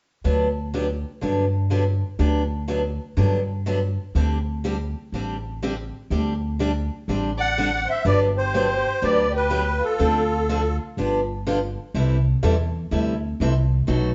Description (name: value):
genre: acoustic string swing (jazz manouche)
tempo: 123 BPM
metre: 4/4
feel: swing 64% on 8ths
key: G major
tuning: A4 = 440 Hz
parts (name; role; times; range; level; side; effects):
- picked steel-string acoustic guitar; accompaniment; 0.2-14.1 s; B2 to A4; -27 LUFS; equal; none
- upright bass; bass; 0.2-14.1 s; G1 to G2; -26 LUFS; equal; none
- musette accordion; melody; 7.4-10.8 s; A4 to F#5; -25 LUFS; equal; none
- dark violin; second line; 7.4-10.8 s; F4 to D5; -32 LUFS; equal; none
room: moderate studio reverb, RT60 1.0 s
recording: heard from further back in the room, nothing above 7.8 kHz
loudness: -23 LUFS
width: mono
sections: 0.3-8.0 A section; 8.0-14.1 B section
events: none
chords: 0.3 Gmaj7/D; 4.1 D7sus4; 8.0 Gmaj7; 10.0 Dm7; 11.0 G7; 11.9 C6